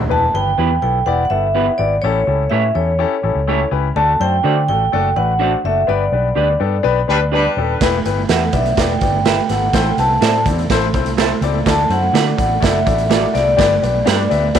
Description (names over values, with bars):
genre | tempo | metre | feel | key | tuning
uptempo 1960s-style soul | 125 BPM | 4/4 | straight | unclear | A4 = 441 Hz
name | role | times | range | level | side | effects
clear baby grand piano | accompaniment | 0.0-14.6 s | G2 to E5 | -21 LUFS | left 12 dB | none
vintage muted fingered electric bass | bass | 0.0-14.6 s | D#1 to D3 | -20 LUFS | equal | none
vibraphone with hard mallets | melody | 0.1-14.6 s | C#5 to A5 | -18 LUFS | right 1 dB | none
electric guitar through a small old amp | stabs | 0.6-14.2 s | A3 to E5 | -23 LUFS | right 10 dB | none
clear horn section | second line | 7.1-7.8 s | G3 to B4 | -19 LUFS | left 1 dB | none
raw garage drum kit | drums | 7.8-14.6 s | hi-hat, kick drum, snare drum | -18 LUFS | right 5 dB | none
room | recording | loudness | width
light reverb, small room ambience | 1960s-style stereo with parts hard left and right | -13 LUFS | side -8 dB against mid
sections
0.1-14.6 A section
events
band accent 5.9-7.8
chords
0.1 Em; 2.0 A7; 4.0 D; 5.9 G; 7.8 Em; 9.7 Am; 11.7 Dadd9; 13.6 G